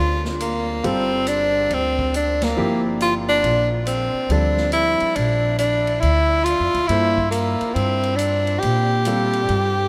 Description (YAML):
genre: modal jazz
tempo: 138 BPM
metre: 4/4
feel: swing 65% on 8ths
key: G dorian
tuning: A4 = 440 Hz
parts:
  - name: breathy tenor saxophone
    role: melody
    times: 0.0-9.9 s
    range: Bb3 to G4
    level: -22 LUFS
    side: equal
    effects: none
  - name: upright bass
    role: bass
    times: 0.0-9.9 s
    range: G1 to Bb2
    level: -26 LUFS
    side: equal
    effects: none
  - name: swinging big-band drum kit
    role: drums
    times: 0.2-9.6 s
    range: hi-hat, kick drum, ride cymbal, snare drum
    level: -36 LUFS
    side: equal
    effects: none
  - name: warm grand piano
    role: accompaniment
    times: 0.8-9.7 s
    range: F3 to C5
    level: -30 LUFS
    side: equal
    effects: none
room: wet cathedral reverb, RT60 6.8 s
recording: in a vast, echoing space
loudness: -20 LUFS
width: mono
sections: 0.0-9.9 A section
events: band accent 2.3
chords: 0.0 Gm9